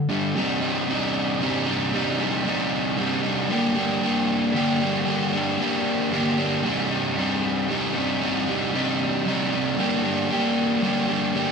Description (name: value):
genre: rock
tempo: 114 BPM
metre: 3/4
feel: straight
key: C minor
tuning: A4 = 439 Hz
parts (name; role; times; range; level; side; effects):
- crunchy overdriven guitar; solo; 0.0-11.5 s; C2 to G4; -21 LUFS; equal; none
room: wet stone room reverb, RT60 1.1 s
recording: band playing live in one room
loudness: -21 LUFS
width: side -5 dB against mid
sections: 0.4-11.5 A section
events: none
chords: 0.4 Cm; 3.5 Gm; 6.6 Cm; 9.8 Gm